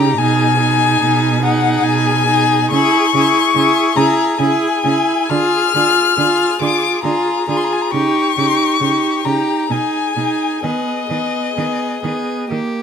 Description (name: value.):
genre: classical, slow romantic movement for string quartet.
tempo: 64-74 BPM.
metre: 3/4.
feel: rubato.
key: G# minor.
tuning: A4 = 442 Hz.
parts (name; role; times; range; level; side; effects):
rich violin; melody; 0.0-12.5 s; D#5 to F6; -17 LUFS; left 8 dB; none.
clear violin; second line; 0.0-12.8 s; G4 to G#4; -21 LUFS; left 2 dB; none.
rich viola; accompaniment; 0.0-12.8 s; A#3 to F4; -19 LUFS; right 3 dB; none.
clear cello; bass; 0.0-12.6 s; B2 to D#3; -19 LUFS; right 4 dB; none.
room: moderate large studio reverb, RT60 0.9 s.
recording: none.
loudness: -13 LUFS.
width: side -7 dB against mid.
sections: 0.0-12.8 A section.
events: none.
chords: 0.2 G#m/B; 2.7 C#m; 5.3 Ddim; 7.9 D#7/C#; 9.7 G#5; 10.6 G#m/D#.